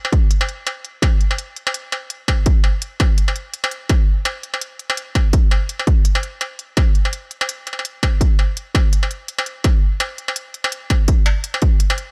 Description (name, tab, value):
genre	drum and bass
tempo	167 BPM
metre	4/4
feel	swing 57% on 16ths, half-time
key	none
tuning	none
part	electronic struck metal and hi-hat	drums	0.0-12.1 s	none	-25 LUFS	equal	none
part	electronic kick drum	drums	0.1-11.7 s	none	-17 LUFS	equal	none
room	little or no reverb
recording	dry, gritty hardware recording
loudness	-19 LUFS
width	mono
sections	0.0-12.1 A section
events	none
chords	none